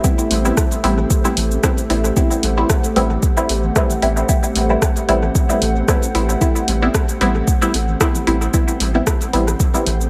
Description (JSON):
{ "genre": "dub techno", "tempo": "113 BPM", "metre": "4/4", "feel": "swing 55% on 16ths", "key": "A dorian", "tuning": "A4 = 441 Hz", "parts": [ { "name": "dark analog pad", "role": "sustained chords", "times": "0.0-10.1 s", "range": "A3 to F#5", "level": "-26 LUFS", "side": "equal", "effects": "chorus, sidechain pumping" }, { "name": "filtered dub chord stab", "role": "stabs", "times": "0.0-9.8 s", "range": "G3 to E4", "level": "-22 LUFS", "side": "equal", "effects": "phaser, vintage 12-bit sampler grit, sidechain pumping, dub echo" }, { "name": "deep house drum kit", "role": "drums", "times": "0.0-10.1 s", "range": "cabasa, hi-hat, rim click", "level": "-25 LUFS", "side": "equal", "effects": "overdrive, dub echo" }, { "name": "electronic kick drum", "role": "drums", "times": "0.0-9.7 s", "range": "none", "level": "-20 LUFS", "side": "equal", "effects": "overdrive" }, { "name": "flickering grainy texture", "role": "texture", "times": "0.0-10.1 s", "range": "C4", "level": "-33 LUFS", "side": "equal", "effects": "built-in reverb, sidechain pumping" }, { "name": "soft dub sub bass", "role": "bass", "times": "0.3-10.1 s", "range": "A1", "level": "-22 LUFS", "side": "equal", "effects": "sidechain pumping" }, { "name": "electronic toms and congas", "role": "percussion", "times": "0.3-10.0 s", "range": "none", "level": "-32 LUFS", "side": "equal", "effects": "none" } ], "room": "light reverb", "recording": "echo-heavy mix", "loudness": "-17 LUFS", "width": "mono", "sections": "0.0-10.1 A section", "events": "none", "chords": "0.0 Am7" }